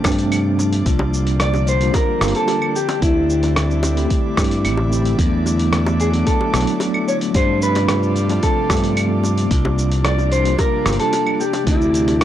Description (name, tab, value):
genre	sunset chillout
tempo	111 BPM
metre	4/4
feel	straight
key	unclear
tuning	A4 = 440 Hz
part	mellow tine electric piano	accompaniment	0.0-12.2 s	F3 to G4	-22 LUFS	equal	medium stereo tremolo, auto-pan, tape echo
part	airy breathy pad	sustained chords	0.0-12.2 s	C3 to F4	-27 LUFS	left 1 dB	chorus
part	dusty soul sampler-style drum kit	drums	0.0-12.2 s	claves, hi-hat, rim click, shaker	-24 LUFS	equal	none
part	electronic kick drum	drums	0.0-11.8 s	none	-20 LUFS	equal	none
part	bongos	percussion	0.0-12.2 s	none	-26 LUFS	left 2 dB	none
part	drifting glass-harmonics texture	texture	0.0-12.2 s	D5 to D6	-33 LUFS	equal	chorus, built-in reverb
part	modern bright fingered electric bass	bass	0.1-12.2 s	G1 to G2	-19 LUFS	equal	none
part	mellow electric guitar	melody	1.4-12.2 s	E4 to D5	-21 LUFS	equal	analog delay
room	little or no reverb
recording	dry, gritty hardware recording, cassette tape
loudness	-15 LUFS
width	side -11 dB against mid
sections	0.0-12.2 A section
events	none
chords	0.0 G9sus4; 0.9 C9sus4; 2.8 D9sus4; 5.2 E9sus4; 7.3 G9sus4; 9.5 C9sus4; 11.4 D9sus4